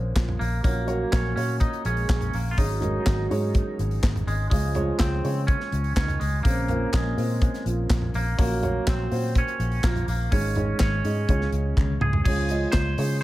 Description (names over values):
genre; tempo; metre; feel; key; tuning
piano-driven pop; 124 BPM; 4/4; straight; Db major; A4 = 440 Hz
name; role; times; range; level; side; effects
dark upright piano; accompaniment; 0.0-13.2 s; Ab2 to Eb5; -31 LUFS; right 1 dB; dub echo
vintage muted fingered electric bass; bass; 0.0-13.2 s; Ab1 to Db3; -26 LUFS; equal; none
dark French horn section; second line; 0.1-13.0 s; Db3 to Ab4; -34 LUFS; right 4 dB; none
modern studio drum kit; drums; 0.2-13.1 s; crash cymbal, handclaps, hi-hat, kick drum, snare drum, toms; -25 LUFS; equal; none
group handclap; percussion; 0.2-12.9 s; none; -47 LUFS; left 2 dB; none
twangy electric guitar; melody; 0.4-13.2 s; Ab3 to C5; -31 LUFS; equal; spring reverb, dub echo
room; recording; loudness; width
studio reverb; echo-heavy mix; -22 LUFS; side -16 dB against mid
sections
0.0-12.3 A section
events
drum fill 11.8-12.3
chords
0.0 Bbmadd9; 0.6 Gb/Bb; 2.6 Absus4; 4.5 Db; 6.5 Bbmadd9; 8.4 Gb/Bb; 10.3 Absus4; 11.3 Db